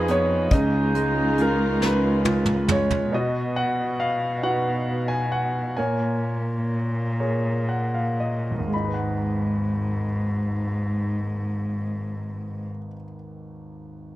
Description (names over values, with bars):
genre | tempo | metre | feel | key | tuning
acoustic folk-pop ballad | 37-46 BPM (dotted quarters) | 6/8 | straight | G# dorian | A4 = 440 Hz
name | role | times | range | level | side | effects
warm concert grand piano | melody | 0.0-14.2 s | G#1 to B5 | -25 LUFS | equal | none
warm clarinet | second line | 0.0-2.6 s | D#4 to Ab4 | -28 LUFS | right 2 dB | none
dark chamber string section | sustained chords | 0.0-3.1 s | C#3 to Ab4 | -31 LUFS | left 1 dB | none
muted cello | bass | 0.0-12.7 s | C#2 to B2 | -26 LUFS | equal | none
soft brush drum kit | drums | 0.1-3.1 s | hi-hat, kick drum, snare drum, toms | -24 LUFS | equal | none
room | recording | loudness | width
light reverb | dark, warm production | -22 LUFS | side -16 dB against mid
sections
0.0-3.1 A section; 3.1-8.7 B section; 8.7-11.9 C section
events
drum fill 1.8-3.1; slowing down 3.1-8.7; grand piano fill 7.2-8.7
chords
0.0 Fm7b5; 0.5 C#add9; 3.1 B; 5.8 A#m7; 8.7 G#m7